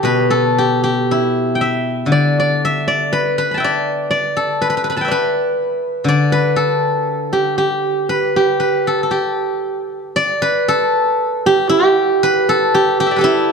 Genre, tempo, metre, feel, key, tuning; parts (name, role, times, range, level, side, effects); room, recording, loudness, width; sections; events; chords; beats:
chinese traditional, Chinese solo plucked strings; 59 BPM; 2/4; rubato; G gong mode; A4 = 436 Hz
steel-string zither; solo; 0.0-13.5 s; B2 to B5; -14 LUFS; equal
light reverb; dark, warm production; -14 LUFS; side -5 dB against mid
0.0-10.2 A section; 10.2-13.5 B section
| 0.04 1.05 | 2.09 3.11 | 4.12 5.10 | 6.07 7.05 | 8.08 9.12 | 10.18 11.22 | 12.26 13.26